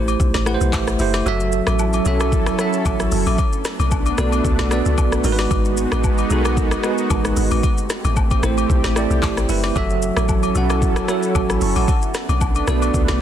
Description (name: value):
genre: amapiano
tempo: 113 BPM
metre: 4/4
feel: swing 55% on 16ths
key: F# minor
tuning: A4 = 440 Hz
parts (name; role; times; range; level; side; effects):
- bell-like tine electric piano; accompaniment; 0.0-13.2 s; F#3 to C#6; -22 LUFS; right 3 dB; medium stereo tremolo
- deep log drum bass; bass; 0.0-13.2 s; F#1 to C#2; -21 LUFS; equal; none
- deep house drum kit; drums; 0.1-13.2 s; handclaps, hi-hat, kick drum, rim click, shaker, snare drum; -22 LUFS; equal; vintage 12-bit sampler grit, soft clipping on snare
- agogo bells and woodblock; percussion; 0.1-13.2 s; none; -29 LUFS; left 9 dB; none
- lush unison pad; sustained chords; 1.6-13.2 s; F#3 to A4; -24 LUFS; right 1 dB; chorus, sidechain pumping
room: digital ambience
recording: dense, heavily limited modern master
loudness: -16 LUFS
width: side -10 dB against mid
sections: 0.0-13.2 A section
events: tine electric piano fill 0.2-1.3, 12.9; kick muted 1.3-2.3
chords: 0.0 Am7; 1.3 F#m7; 3.4 Bm7; 5.2 G#m7; 7.6 Am7; 9.8 F#m7; 11.9 Bm7